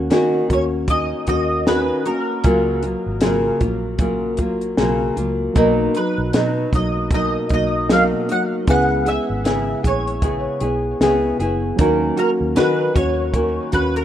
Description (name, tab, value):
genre	indie pop, bedroom pop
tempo	77 BPM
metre	4/4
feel	swing 60% on 16ths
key	F# major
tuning	A4 = 437 Hz
part	nylon-string guitar	accompaniment	0.0-14.0 s	B2 to G#4	-19 LUFS	left 1 dB	wide subtle chorus, warbly pitch drift
part	vintage muted fingered electric bass	bass	0.0-14.0 s	F#1 to D#3	-25 LUFS	equal	none
part	compact cocktail drum kit	drums	0.1-14.0 s	hi-hat, kick drum, snare drum	-21 LUFS	equal	vintage 12-bit sampler grit
part	mandolin	melody	0.5-14.0 s	A#4 to F#5	-23 LUFS	right 1 dB	ensemble chorus, tape echo
part	reed electric piano	accompaniment	5.5-14.0 s	F#3 to A#5	-28 LUFS	right 7 dB	cassette tape
room	light reverb, small room ambience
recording	rough home demo mix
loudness	-16 LUFS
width	side -11 dB against mid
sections	0.0-14.0 A section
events	none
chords	0.0 D#m7; 2.4 F#maj7; 5.6 Bmaj7; 8.7 C#m7; 11.8 D#m7